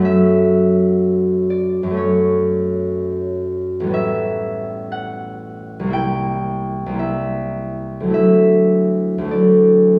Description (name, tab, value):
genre	classical, solo harp piece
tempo	51-63 BPM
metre	4/4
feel	rubato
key	unclear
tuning	A4 = 440 Hz
part	concert harp	solo	0.0-10.0 s	A1 to G#5	-18 LUFS	equal	none
room	wet recital hall reverb, RT60 1.5 s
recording	recorded in a church or concert hall, studio ambience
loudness	-18 LUFS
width	mono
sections	0.0-10.0 A section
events	none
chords	0.0 F#m7; 3.9 A9; 5.9 C7; 8.1 Dadd9